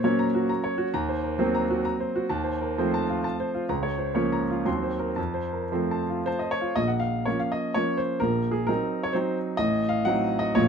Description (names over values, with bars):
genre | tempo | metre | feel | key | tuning
classical, romantic triple-time dance for piano with dotted rhythms | 105-140 BPM | 3/4 | rubato | Bb minor | A4 = 440 Hz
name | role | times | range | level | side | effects
clear grand piano | solo | 0.0-10.7 s | A1 to C6 | -24 LUFS | right 1 dB | none
room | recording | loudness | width
light reverb | close, detailed microphones | -24 LUFS | side -6 dB against mid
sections
0.0-6.8 A section; 6.8-10.7 B section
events
none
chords
0.0 Gb/Bb; 0.9 Cm7b5/Eb; 2.3 F7/Eb; 3.7 Bbm/Db; 4.7 Cdim/Eb; 5.2 F; 6.8 Bbm; 8.2 Cm7b5/Bb; 9.6 Adim7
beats
0.04 0.50 | 0.93 1.38 1.85 | 2.30 2.77 3.24 | 3.70 4.17 4.67 | 5.18 5.73 6.27 | 6.78 7.28 7.76 | 8.23 8.69 9.16 | 9.60 10.07 10.58